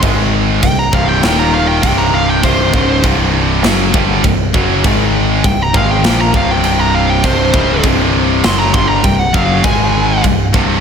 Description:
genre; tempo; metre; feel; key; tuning
heavy metal; 100 BPM; 4/4; straight; C phrygian; A4 = 440 Hz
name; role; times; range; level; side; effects
heavy high-gain guitar; riff; 0.0-10.8 s; C2 to Bb3; -18 LUFS; right 10 dB; distortion
high-gain distorted guitar; riff; 0.0-10.8 s; C2 to Bb3; -18 LUFS; left 10 dB; distortion
overdriven semi-hollow guitar; riff; 0.0-10.8 s; C2 to Bb3; -19 LUFS; equal; none
growling picked electric bass; bass; 0.0-10.8 s; C1 to Bb1; -18 LUFS; equal; overdrive
tight metal drum kit; drums; 0.0-10.7 s; crash cymbal, kick drum, snare drum; -17 LUFS; equal; none
high-gain lead guitar; melody; 0.6-10.2 s; C5 to C6; -17 LUFS; equal; distortion, slapback echo, digital delay
room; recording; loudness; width
moderate lush hall reverb, RT60 1.8 s; big arena sound; -10 LUFS; side -7 dB against mid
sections
0.0-10.8 A section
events
lead electric guitar solo 0.0-10.8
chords
0.0 Ab5; 0.6 C5; 1.2 Eb5; 1.8 C5; 4.8 Ab5; 5.4 Cm; 9.6 Ab5; 10.2 C5

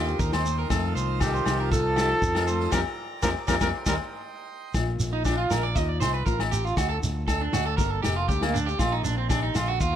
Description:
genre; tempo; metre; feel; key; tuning
highlife guitar band; 118 BPM; 4/4; straight; Bb major; A4 = 441 Hz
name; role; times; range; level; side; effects
breathy trumpet; melody; 0.0-3.9 s; F4 to Bb4; -28 LUFS; equal; none
mellow trombone; second line; 0.0-3.9 s; D3 to G3; -35 LUFS; right 4 dB; none
nylon-string guitar; accompaniment; 0.0-10.0 s; F2 to A4; -34 LUFS; left 7 dB; none
pipe organ, full organ; sustained chords; 0.0-4.7 s; D5 to C6; -39 LUFS; right 5 dB; none
electric guitar at the edge of break-up; arpeggios; 0.0-10.0 s; Bb3 to Eb5; -29 LUFS; right 4 dB; tape echo
fingered electric bass; bass; 0.0-10.0 s; F1 to F2; -28 LUFS; equal; none
shekere; percussion; 0.1-9.9 s; none; -33 LUFS; right 3 dB; none
vintage drum kit; drums; 0.2-9.9 s; kick drum, snare drum; -30 LUFS; equal; none
agogo bells; percussion; 0.3-9.7 s; none; -33 LUFS; left 11 dB; none
room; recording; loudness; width
light reverb; none; -23 LUFS; side -10 dB against mid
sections
0.0-4.8 A section; 4.8-10.0 B section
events
band accent 2.7-4.8; clean electric guitar solo 4.8-10.0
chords
0.0 Eb6; 0.7 F7; 2.7 Bb6/F; 3.7 Eb6; 4.8 Bb; 5.8 Ebsus2; 6.8 D; 7.8 Gmadd9; 8.8 Bb

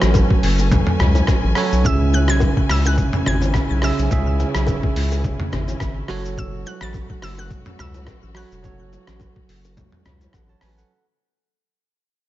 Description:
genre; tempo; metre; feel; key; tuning
afrobeats; 106 BPM; 4/4; swing 55% on 16ths; F# minor; A4 = 440 Hz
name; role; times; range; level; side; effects
mallet-like synth pluck; melody; 0.0-9.2 s; E6 to A6; -29 LUFS; equal; chorus, ping-pong delay
bell-like tine electric piano; accompaniment; 0.0-11.1 s; C#3 to A5; -24 LUFS; right 5 dB; none
rich studio string section; sustained chords; 0.0-10.9 s; C#3 to G#5; -29 LUFS; left 1 dB; none
saturated sub bass; bass; 0.0-10.8 s; E1 to C#2; -20 LUFS; equal; none
trip hop sampler-style drum kit; drums; 0.0-10.9 s; hi-hat, kick drum, rim click, shaker, toms; -21 LUFS; equal; none
bongos and congas; percussion; 0.1-10.5 s; none; -29 LUFS; left 4 dB; none
room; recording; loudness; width
digital ambience; nothing above 7.6 kHz; -16 LUFS; side -14 dB against mid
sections
0.0-10.9 A section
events
fade-out 0.0-10.9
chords
0.0 F#m; 1.8 C#m; 6.1 F#m

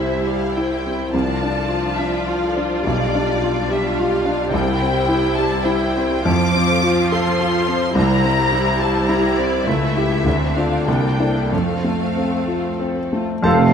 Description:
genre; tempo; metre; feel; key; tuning
classical, romantic movement for piano and orchestra; 90-109 BPM; 3/4; rubato; C major, F major from 6.3 s; A4 = 440 Hz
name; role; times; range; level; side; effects
clear concert grand piano; melody; 0.0-13.7 s; B1 to A5; -19 LUFS; left 2 dB; none
rich symphonic violin section; melody; 0.0-12.8 s; C5 to D6; -25 LUFS; left 2 dB; none
rich symphonic violin section; second line; 0.0-13.5 s; G3 to D5; -28 LUFS; left 1 dB; none
rich symphonic viola section; accompaniment; 0.0-13.3 s; F3 to F4; -24 LUFS; right 4 dB; none
rich symphonic cello section; bass; 1.1-13.7 s; C2 to A3; -25 LUFS; right 5 dB; none
large flute ensemble; second line; 13.4-13.7 s; F5; -22 LUFS; equal; none
mellow oboe; second line; 13.4-13.6 s; C5; -24 LUFS; right 4 dB; none
mellow tuba; bass; 13.4-13.7 s; F1; -22 LUFS; right 7 dB; none
rich symphonic double bass section; bass; 13.4-13.7 s; F1; -24 LUFS; right 6 dB; none
dark clarinet; second line; 13.5-13.6 s; A4; -25 LUFS; right 1 dB; none
warm bassoon; accompaniment; 13.5-13.6 s; F3; -26 LUFS; right 4 dB; none
dark French horn section; sustained chords; 13.5-13.7 s; A3; -24 LUFS; left 2 dB; none
warm trombone section; sustained chords; 13.5-13.7 s; C3 to C4; -21 LUFS; right 7 dB; none
room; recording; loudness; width
wet scoring stage reverb, RT60 1.9 s; none; -16 LUFS; side -7 dB against mid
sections
0.0-13.5 A section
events
none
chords
0.0 C; 1.1 Dm7/C; 2.8 G7/B; 4.5 C; 6.3 F; 8.0 C7; 9.7 A7/C#; 10.3 Dm7; 10.9 C13; 11.5 F

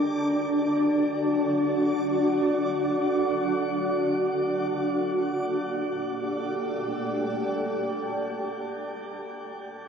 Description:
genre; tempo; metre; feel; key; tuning
ambient; free time; none; none; G harmonic minor; A4 = 440 Hz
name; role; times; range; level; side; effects
granular cloud pad; sustained chords; 0.0-8.9 s; Bb3 to G5; -24 LUFS; equal; built-in reverb
backwards swelling texture; texture; 0.0-5.3 s; D6; -38 LUFS; equal; built-in reverb
room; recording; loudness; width
wet shimmer reverb, RT60 8.1 s; worn, warbling old tape, cassette tape, warbly pitch drift; -24 LUFS; side -7 dB against mid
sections
0.0-5.2 A section; 5.2-8.4 B section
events
filter sweep on ambient pad 0.0-5.2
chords
0.0 D; 5.2 Gmadd9

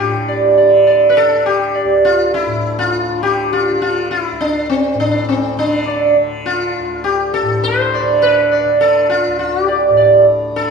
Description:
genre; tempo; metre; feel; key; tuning
indian classical, Hindustani; 102 BPM; 4/4; straight; D raga bhimpalasi; A4 = 440 Hz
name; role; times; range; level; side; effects
sitar; melody; 0.0-10.7 s; C4 to D5; -12 LUFS; right 1 dB; none
tanpura; drone; 0.0-10.7 s; D2 to D3; -24 LUFS; left 2 dB; none
room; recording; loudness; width
wet recital hall reverb, RT60 1.6 s; minimal, uncompressed stereo recording; -12 LUFS; side -5 dB against mid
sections
0.0-10.7 A section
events
none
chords
none

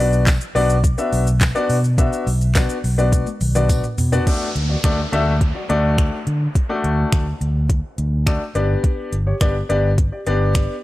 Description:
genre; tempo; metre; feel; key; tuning
dance-pop; 105 BPM; 4/4; straight; D major; A4 = 444 Hz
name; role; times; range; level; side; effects
clear grand piano; accompaniment; 0.0-10.7 s; A3 to E5; -21 LUFS; left 2 dB; sidechain pumping
fingered electric bass; bass; 0.0-10.7 s; G1 to D3; -19 LUFS; equal; sidechain pumping
smooth R&B drum kit; drums; 0.1-10.7 s; crash cymbal, finger snaps, handclaps, hi-hat, kick drum, shaker, snare drum, toms; -19 LUFS; equal; none
tambourine; percussion; 0.3-3.8 s; none; -35 LUFS; right 4 dB; none
downlifter; sound effects; 4.3-8.8 s; none; -32 LUFS; equal; none
room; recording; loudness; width
little or no reverb; dry, gritty hardware recording; -16 LUFS; side -16 dB against mid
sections
0.0-4.3 A section; 4.3-10.8 B section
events
drum fill 3.1-4.3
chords
0.0 Bm; 4.3 D; 8.6 G

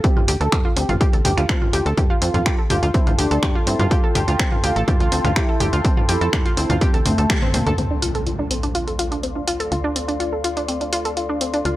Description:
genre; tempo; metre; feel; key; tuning
melodic techno; 124 BPM; 4/4; straight; D minor; A4 = 440 Hz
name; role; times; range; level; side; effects
expressive synth lead; melody; 0.0-7.7 s; A3 to A4; -26 LUFS; equal; lush chorus, sidechain pumping, tape echo
deep dark ambient pad; sustained chords; 1.4-11.8 s; A4 to C6; -29 LUFS; left 1 dB; chorus, built-in reverb, sidechain pumping
analog pluck; arpeggios; 0.0-11.8 s; C4 to A4; -24 LUFS; equal; chorus, cassette tape, sidechain pumping, tape echo
electronic kick drum; drums; 0.0-7.4 s; none; -18 LUFS; equal; overdrive
punchy analog drum machine; drums; 0.0-11.8 s; finger snaps, hi-hat, toms; -24 LUFS; equal; none
tight sequencer bass; bass; 0.3-11.8 s; A1 to G2; -23 LUFS; equal; sidechain pumping
impact; sound effects; 7.8-9.7 s; none; -28 LUFS; equal; none
room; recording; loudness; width
digital ambience; dry, gritty hardware recording, transformer saturation; -17 LUFS; side -16 dB against mid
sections
0.0-7.8 A section; 7.8-11.8 B section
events
drum fill 7.3-7.8; band accent 7.3; impact 7.8-9.7; filter sweep on synth pluck 7.8-11.8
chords
0.0 Dm7

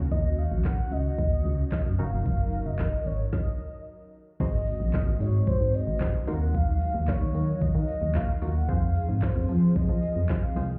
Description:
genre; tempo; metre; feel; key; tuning
dance-pop; 112 BPM; 4/4; straight; Eb dorian; A4 = 439 Hz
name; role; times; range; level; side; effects
punchy chord stab; accompaniment; 0.0-10.7 s; Ab3 to C5; -40 LUFS; equal; chorus, sidechain pumping
airy breathy pad; sustained chords; 0.0-10.8 s; Eb3 to F5; -38 LUFS; equal; chorus, sidechain pumping
solid FM bass; bass; 0.0-10.8 s; F1 to F3; -28 LUFS; equal; sidechain pumping
warm velvety synth lead; melody; 0.1-10.7 s; C5 to Gb5; -37 LUFS; equal; chorus, digital delay
smooth R&B drum kit; drums; 0.1-10.7 s; crash cymbal, handclaps, hi-hat, kick drum, snare drum; -29 LUFS; equal; none
room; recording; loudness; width
little or no reverb; heard muffled through a wall, club reverb, EQ; -26 LUFS; mono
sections
0.0-4.4 A section; 4.4-10.8 B section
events
stop 3.3-4.4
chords
0.0 Ebm7; 2.0 Gb6; 4.4 Ab7; 6.3 Ebmadd9; 8.7 Fm

